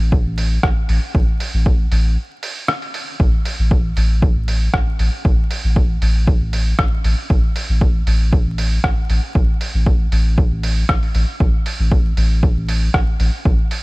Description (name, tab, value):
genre	dub techno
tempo	117 BPM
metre	4/4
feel	swing 54% on 16ths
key	unclear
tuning	A4 = 440 Hz
part	soft dub sub bass	bass	0.0-13.6 s	A1	-17 LUFS	equal	sidechain pumping
part	electronic kick drum	drums	0.1-13.6 s	none	-17 LUFS	equal	none
part	lo-fi sampler-style drum kit	drums	0.4-13.8 s	hi-hat, rim click	-25 LUFS	right 1 dB	none
room	little or no reverb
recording	dark, warm production, vinyl crackle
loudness	-15 LUFS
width	side -23 dB against mid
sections	0.0-3.2 A section; 3.2-13.8 A section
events	break 2.2-3.2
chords	none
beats	0.12 0.63 | 1.15 1.66 2.17 2.69 | 3.20 3.71 4.22 4.74 | 5.25 5.76 6.28 6.79 | 7.30 7.81 8.33 8.84 | 9.35 9.86 10.38 10.89 | 11.40 11.92 12.43 12.94 | 13.45